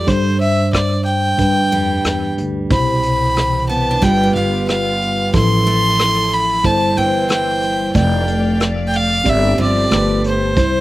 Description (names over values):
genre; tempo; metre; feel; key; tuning
acoustic folk-pop ballad; 92 BPM; 4/4; straight; unclear; A4 = 440 Hz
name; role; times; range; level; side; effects
rich violin; melody; 0.0-10.8 s; C5 to C6; -18 LUFS; right 1 dB; none
tine electric piano; accompaniment; 0.0-10.8 s; F1 to D5; -18 LUFS; equal; medium stereo tremolo, slapback echo
picked steel-string acoustic guitar; arpeggios; 0.0-10.2 s; E3 to D4; -24 LUFS; right 2 dB; none
upright bass; bass; 0.0-10.8 s; F1 to G2; -21 LUFS; equal; none
vintage brush drum kit; drums; 0.1-10.7 s; hi-hat, kick drum, rim click; -20 LUFS; equal; none
warm chamber string section; sustained chords; 2.7-10.8 s; E3 to F5; -29 LUFS; left 1 dB; none
room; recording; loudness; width
little or no reverb; recorded outdoors, with no room sound; -13 LUFS; side -17 dB against mid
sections
0.0-10.8 A section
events
none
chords
0.1 Gsus4; 1.4 G; 2.7 Cmaj7; 4.0 G7; 5.3 Fmaj7/A; 6.6 C/G; 8.0 F6; 9.3 Gsus4; 9.9 Gadd9